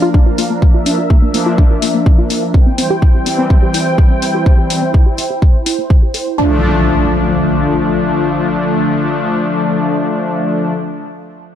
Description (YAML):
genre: melodic techno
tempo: 125 BPM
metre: 4/4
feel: straight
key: D minor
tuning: A4 = 440 Hz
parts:
  - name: warm analog pad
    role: sustained chords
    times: 0.0-10.7 s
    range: D3 to G5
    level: -19 LUFS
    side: equal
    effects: chorus, sidechain pumping
  - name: tight sequenced synth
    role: arpeggios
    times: 0.0-6.6 s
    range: Bb3 to A4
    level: -20 LUFS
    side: equal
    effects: chorus, sidechain pumping, ping-pong delay
  - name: brassy analog pad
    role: stabs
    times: 0.0-10.7 s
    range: E3 to D4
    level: -16 LUFS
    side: left 2 dB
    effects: chorus, vintage 12-bit sampler grit, sidechain pumping, ping-pong delay
  - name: electronic kick drum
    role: drums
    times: 0.1-6.0 s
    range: none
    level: -9 LUFS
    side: equal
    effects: none
  - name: electronic hi-hat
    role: drums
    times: 0.4-6.2 s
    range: none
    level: -21 LUFS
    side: left 3 dB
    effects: sidechain pumping on hats, sidechain pumping on perc, sidechain pumping on toms
  - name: impact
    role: sound effects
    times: 6.4-10.8 s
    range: none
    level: -19 LUFS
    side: equal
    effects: none
room: light reverb, digital ambience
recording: dark, warm production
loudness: -11 LUFS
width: side -10 dB against mid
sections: 0.0-6.4 A section; 6.4-10.2 B section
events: filter sweep on analog synth pad 0.0-6.4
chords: 0.0 Bb; 2.5 C; 6.4 Dm